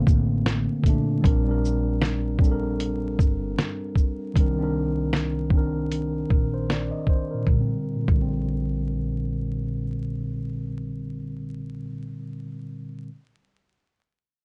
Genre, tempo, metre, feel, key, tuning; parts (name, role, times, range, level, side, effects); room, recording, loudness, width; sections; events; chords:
lo-fi hip hop; 77 BPM; 4/4; swing 58% on 16ths; Bb major; A4 = 440 Hz
mellow tine electric piano; accompaniment; 0.0-13.1 s; Bb2 to Eb5; -29 LUFS; equal; cassette tape, low-pass filter
upright bass; bass; 0.0-12.0 s; G1 to C2; -31 LUFS; equal
lo-fi sampler-style drum kit; drums; 0.1-8.3 s; hi-hat, kick drum, shaker, snare drum; -23 LUFS; equal; vintage 12-bit sampler grit
light reverb; dark, warm production, vinyl crackle, nothing above 10.8 kHz; -25 LUFS; mono
0.0-1.2 A section; 1.2-7.5 B section; 7.5-10.6 C section
filter sweep on tine electric piano 1.2-7.5
0.0 Bbmaj9; 1.2 Bb69; 4.3 Cm9; 7.5 Bb69